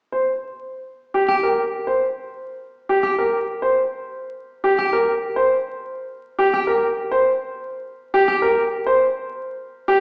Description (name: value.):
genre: classical, minimalist pattern music.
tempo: 103 BPM.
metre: 3/4.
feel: straight.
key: unclear.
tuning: A4 = 438 Hz.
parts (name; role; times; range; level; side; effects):
bright grand piano; melody; 0.1-10.0 s; G4 to C5; -21 LUFS; equal; none.
clean electric guitar; arpeggios; 1.3-8.5 s; G4; -28 LUFS; equal; none.
room: wet recital hall reverb, RT60 1.7 s.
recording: heard from further back in the room, vinyl crackle, small speaker sound.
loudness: -20 LUFS.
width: mono.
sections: 0.0-10.0 A section.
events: none.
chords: none.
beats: 0.41 1.00 | 1.58 2.16 2.75 | 3.33 3.91 4.49 | 5.08 5.66 6.24 | 6.82 7.41 7.99 | 8.57 9.15 9.74.